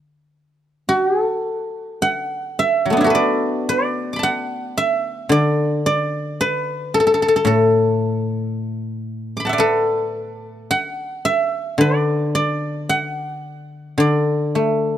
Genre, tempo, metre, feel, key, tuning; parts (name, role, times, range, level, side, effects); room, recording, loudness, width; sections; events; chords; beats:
chinese traditional, Chinese solo plucked strings; 55 BPM; 4/4; rubato; D gong mode; A4 = 444 Hz
guzheng; solo; 0.9-15.0 s; A2 to D6; -17 LUFS; equal
small room ambience; dry, close 1970s-style studio recording; -17 LUFS; side -10 dB against mid
0.9-15.0 A section
| 0.88 2.01 3.13 4.22 | 5.30 6.39 7.46 8.53 | 9.61 10.71 11.81 12.90 | 14.00